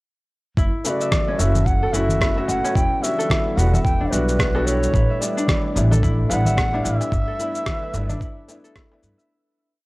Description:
organic downtempo; 110 BPM; 4/4; swing 57% on 16ths; A4 = 440 Hz
airy breathy pad; sustained chords; 0.6-9.3 s; C#3 to B4; -34 LUFS; right 1 dB
Celtic harp; arpeggios; 0.6-9.9 s; C#4 to E5; -28 LUFS; left 1 dB; tape echo
upright bass; bass; 0.6-9.1 s; E1 to G2; -21 LUFS; equal; tube saturation, sidechain pumping
electronic kick drum; drums; 0.6-8.9 s; -22 LUFS; equal; overdrive
electronic shaker and rim click; drums; 0.6-9.3 s; -27 LUFS; equal; overdrive
bass bansuri; melody; 0.8-9.0 s; B4 to G5; -25 LUFS; equal; tape echo
felt-muted upright piano; accompaniment; 0.8-9.3 s; C#3 to F#4; -28 LUFS; left 1 dB; sidechain pumping
darbuka; percussion; 0.8-9.0 s; -30 LUFS; left 1 dB
small room ambience; dry, gritty hardware recording, cassette tape; -18 LUFS; side -22 dB against mid
0.6-9.3 groove
fade-out 6.4-9.3
0.6 F#m7; 2.8 Em7; 4.9 A9sus4; 7.1 G6
| 0.58 1.12 1.67 2.21 | 2.76 3.30 3.85 4.39 | 4.94 5.49 6.03 6.58 | 7.12 7.67 8.21 8.76

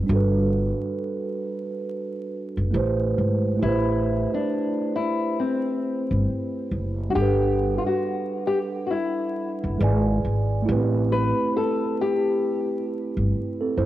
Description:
lo-fi hip hop; 68 BPM; 4/4; swing 62% on 16ths; A dorian; A4 = 441 Hz
mellow tine electric piano; accompaniment; 0.0-13.9 s; G3 to G#5; -26 LUFS; right 4 dB; slow stereo tremolo, low-pass filter
upright bass; bass; 0.0-13.9 s; F#1 to A1; -23 LUFS; equal
nylon-string guitar; melody; 3.6-12.8 s; C4 to B4; -26 LUFS; left 4 dB; low-pass filter, cassette tape
moderate lush hall reverb, RT60 2.7 s; home recording on cassette, vinyl crackle; -22 LUFS; side -14 dB against mid
0.0-3.6 A section; 3.6-13.9 A section
0.1 Gmaj9; 2.7 Am9; 7.2 Gmaj9; 9.8 G#dim; 10.7 Am9
| 0.09 0.97 1.85 2.74 | 3.62 4.50 5.38 6.27 | 7.15 8.03 8.91 9.80 | 10.68 11.56 12.44 13.33

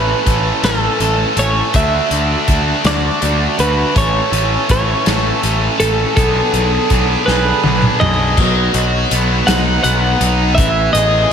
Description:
indie rock; 54 BPM (dotted quarters); 6/8; straight; A major; A4 = 440 Hz
twelve-string electric guitar; melody; 0.0-11.3 s; A4 to F#5; -18 LUFS; right 1 dB; slapback echo
overdriven electric guitar; riff; 0.0-11.3 s; E3 to A4; -17 LUFS; right 1 dB; slapback echo
fuzz picked electric bass; bass; 0.0-11.3 s; A1 to D2; -17 LUFS; equal; overdrive
loose indie drum kit; drums; 0.3-11.1 s; crash cymbal, hi-hat, kick drum, snare drum, toms; -18 LUFS; left 1 dB
moderate lush hall reverb, RT60 2.1 s; big arena sound; -12 LUFS; side -7 dB against mid
0.0-8.4 A section; 8.4-11.3 B section
drum fill 7.3-8.4
0.0 A; 1.7 D; 4.0 A; 6.2 Bm6; 8.4 B; 10.6 Amaj7(no3)
0.64 | 1.74 2.85 | 3.96 5.06 | 6.17 7.28 | 8.38 9.48 | 10.59

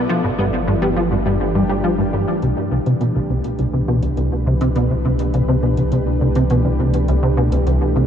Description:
ambient, sequencer-driven space music; 103 BPM; 4/4; straight; A4 = 443 Hz
lush unison pad; sustained chords; 0.0-8.1 s; E3 to D5; -22 LUFS; equal; chorus
warbly dusty pluck; arpeggios; 0.0-8.0 s; G3 to D5; -29 LUFS; left 1 dB
plucky analog bass; riff; 0.0-8.0 s; C2 to G3; -18 LUFS; equal; ensemble chorus, tape echo
warm sub bass; bass; 0.0-8.1 s; G1 to C2; -22 LUFS; equal
electronic hi-hat and congas; percussion; 2.4-8.1 s; -43 LUFS; right 5 dB; tape echo
wet cathedral reverb, RT60 6.1 s; in a vast, echoing space; -16 LUFS; side -9 dB against mid
0.0-2.4 A section; 2.4-8.1 B section
fade-in on drum 2.4-8.1
0.1 G7; 2.4 C
| 0.10 0.68 1.26 1.84 | 2.43 3.01 3.59 4.17 | 4.76 5.34 5.92 6.50 | 7.09 7.67

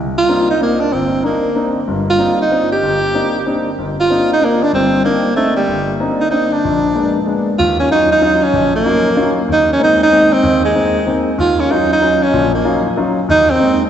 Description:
jazz; 189 BPM; 3/4; swing 64% on 8ths; C minor, Eb dorian from 7.6 s; A4 = 442 Hz
warm concert grand piano; accompaniment; 0.0-13.8 s; G1 to F4; -17 LUFS; left 2 dB
clear tenor saxophone; melody; 0.2-13.8 s; G3 to G4; -13 LUFS; right 1 dB
wet church reverb, RT60 3.2 s; recorded in a church or concert hall, nothing above 8.0 kHz; -12 LUFS; side -9 dB against mid
0.0-7.6 A section; 7.6-13.9 B section
0.0 Cm9; 6.6 Bb7b9; 7.6 Ebm9; 9.5 Abadd9/Eb; 11.4 Ebm9; 13.3 Abadd9/Eb
0.28 0.59 | 0.91 1.23 1.55 | 1.87 2.19 2.50 | 2.82 3.14 3.46 | 3.77 4.09 4.41 | 4.73 5.05 5.36 | 5.68 6.00 6.32 | 6.63 6.95 7.27 | 7.58 7.90 8.22 | 8.53 8.85 9.17 | 9.48 9.80 10.12 | 10.43 10.75 11.06 | 11.38 11.70 12.01 | 12.33 12.65 12.96 | 13.28 13.59

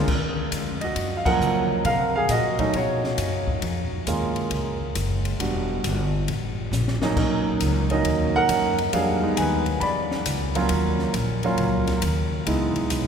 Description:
jazz piano trio; 136 BPM; 4/4; swing 67% on 8ths; Eb minor; A4 = 440 Hz
warm concert grand piano; melody; 0.0-13.1 s; F3 to B5; -23 LUFS; right 2 dB
upright bass; bass; 0.0-13.1 s; E1 to Db3; -26 LUFS; left 1 dB
open jazz drum kit; drums; 0.1-13.0 s; crash cymbal, hi-hat, kick drum, ride cymbal, snare drum; -30 LUFS; left 2 dB
wet cathedral reverb, RT60 6.9 s; recorded in a church or concert hall; -21 LUFS; side -7 dB against mid
0.1-13.1 A section
band accent 1.2; drum fill 6.7-7.2
0.1 Ebm7; 1.9 Cm7b5; 2.7 Bsus2; 3.6 Bbm7; 5.4 Em7; 6.3 N.C.; 7.2 Bmaj7; 8.9 Fm7b5; 9.8 E5; 10.7 Ebm7; 12.5 Dbm7
| 0.08 0.52 0.97 1.41 | 1.85 2.29 2.74 3.18 | 3.62 4.07 4.51 4.95 | 5.39 5.84 6.28 6.72 | 7.16 7.61 8.05 8.49 | 8.93 9.38 9.82 10.26 | 10.70 11.14 11.59 12.03 | 12.47 12.91

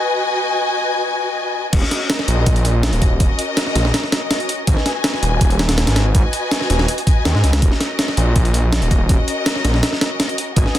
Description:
drum and bass, jungle; 163 BPM; 4/4; straight; Eb minor; A4 = 440 Hz
warm symphonic string section; sustained chords; 0.0-10.8 s; Db4 to Ab5; -21 LUFS; left 2 dB
detuned saw bass; bass; 1.7-10.7 s; Eb1 to Ab2; -17 LUFS; equal
breakbeat sampler-style drum kit; drums; 1.7-10.8 s; crash cymbal, hi-hat, kick drum, snare drum; -17 LUFS; equal
light reverb, digital ambience; dense, heavily limited modern master; -15 LUFS; side -12 dB against mid
0.0-1.7 A section; 1.7-10.8 B section
drop 1.7-10.8
0.0 Abm7; 1.7 Ebm7; 4.7 Abm7; 7.6 Ebm7
| 0.26 0.63 0.99 1.36 | 1.73 2.10 2.47 2.83 | 3.20 3.57 3.94 4.31 | 4.67 5.04 5.41 5.78 | 6.15 6.52 6.88 7.25 | 7.62 7.99 8.36 8.72 | 9.09 9.46 9.83 10.20 | 10.56

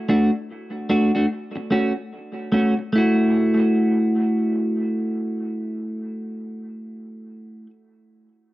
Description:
reggae; 74 BPM; 4/4; swing 62% on 16ths; F# minor; A4 = 440 Hz
clean electric guitar; accompaniment; 0.1-7.7 s; A3 to F#4; -20 LUFS; equal; cassette tape, dub echo
moderate studio reverb, RT60 0.5 s; home recording on cassette; -19 LUFS; side -17 dB against mid
0.0-2.9 A section; 2.9-6.2 B section
0.0 D/A; 1.3 A6; 2.9 F#m7
0.49 1.30 2.12 | 2.93 3.74 4.56 5.37

